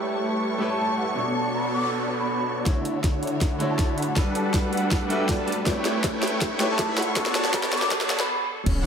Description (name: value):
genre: future bass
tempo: 160 BPM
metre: 4/4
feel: half-time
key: D major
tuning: A4 = 439 Hz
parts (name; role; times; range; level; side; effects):
- bright baby grand piano; accompaniment; 0.0-8.7 s; B2 to C#6; -31 LUFS; left 1 dB; sidechain pumping, analog delay
- rich studio string section; sustained chords; 0.0-8.6 s; G3 to C#6; -33 LUFS; equal; sidechain pumping
- supersaw chords; riff; 0.0-8.9 s; D3 to B5; -27 LUFS; right 1 dB; sidechain pumping, low-pass filter, analog delay
- mellow baroque flute; melody; 0.7-8.3 s; D5 to D6; -31 LUFS; equal; sidechain pumping, analog delay
- noise sweep, riser and impact; sound effects; 1.4-8.9 s; none; -35 LUFS; right 1 dB; none
- electronic kick drum; drums; 2.7-8.7 s; none; -25 LUFS; equal; none
- trap drum kit; drums; 2.7-8.7 s; crash cymbal, hi-hat, snare drum; -28 LUFS; equal; high-pass filter on snare, high-pass filter on hats, high-pass filter on cymbals
- wide unison pluck; arpeggios; 8.7-8.8 s; C#4; -32 LUFS; right 1 dB; sidechain pumping
- warm 808-style bass; bass; 8.7-8.9 s; D1; -24 LUFS; equal; sidechain pumping
room: wet plate reverb, RT60 1.9 s, digital ambience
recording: dreamy mix soaked in reverb, high-pass filter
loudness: -22 LUFS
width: side -7 dB against mid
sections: 0.0-2.7 A section; 2.7-8.7 B section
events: noise sweep 1.4-2.7; build-up 2.7-8.7; drum fill 2.7-8.3; filter sweep on supersaw synth 2.7-8.7; filter sweep 2.7-8.7; break 8.3-8.7; impact 8.7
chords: 0.0 A7; 1.2 Bm9; 2.7 Dmaj7; 4.2 Gmaj9; 5.7 A7; 7.2 Bm9